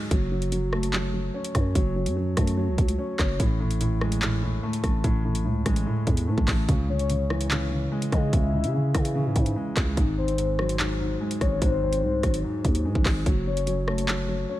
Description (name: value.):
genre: hip hop, drill.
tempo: 146 BPM.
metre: 4/4.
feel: half-time.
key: C# harmonic minor.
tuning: A4 = 440 Hz.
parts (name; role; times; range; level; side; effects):
dark grand piano; accompaniment; 0.0-14.6 s; G#2 to C#4; -27 LUFS; equal; none.
growling 808-style bass; bass; 0.1-14.5 s; F#1 to C#3; -27 LUFS; equal; none.
drill drum kit; drums; 0.1-14.2 s; handclaps, hi-hat, kick drum, rim click; -26 LUFS; equal; none.
soft octave-layered synth lead; second line; 6.9-14.0 s; B#4 to E5; -31 LUFS; left 5 dB; chorus, tremolo, tape echo.
room: little or no reverb.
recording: none.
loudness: -22 LUFS.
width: side -15 dB against mid.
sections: 0.0-14.6 A section.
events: none.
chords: 0.1 F#m; 3.4 Amaj7(no3); 6.7 C#m; 10.0 G#7; 13.3 F#m.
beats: | 0.11 0.52 0.93 1.34 | 1.75 2.17 2.58 2.99 | 3.40 3.81 4.22 4.63 | 5.04 5.45 5.86 6.28 | 6.69 7.10 7.51 7.92 | 8.33 8.74 9.15 9.56 | 9.97 10.38 10.79 11.21 | 11.62 12.03 12.44 12.85 | 13.26 13.67 14.08 14.49.